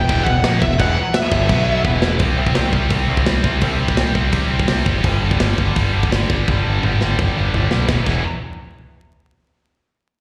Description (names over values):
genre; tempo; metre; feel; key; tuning
heavy metal; 169 BPM; 4/4; straight; E minor; A4 = 440 Hz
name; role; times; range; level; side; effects
high-gain lead guitar; melody; 0.0-1.8 s; E5 to G5; -23 LUFS; equal; distortion, slapback echo, tape echo
heavy high-gain guitar; riff; 0.0-8.2 s; E2 to C4; -26 LUFS; equal; distortion, slapback echo
heavy high-gain guitar; riff; 0.0-8.2 s; E2 to C4; -26 LUFS; equal; distortion, slapback echo
growling fingered electric bass; bass; 0.0-8.2 s; E1 to C2; -22 LUFS; equal; overdrive
tight metal drum kit; drums; 0.1-8.1 s; china cymbal, crash cymbal, hi-hat, kick drum, snare drum, toms; -23 LUFS; equal; none
room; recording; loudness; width
small room ambience; live gig heard through the venue's PA, recital hall reverb, vinyl crackle; -17 LUFS; mono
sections
0.0-2.2 A section; 2.2-7.9 B section; 7.9-9.3 C section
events
drum fill 1.9-2.2, 6.5-7.9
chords
0.0 Em; 1.5 B5; 1.9 E5; 2.2 C5; 5.0 G5; 7.9 E5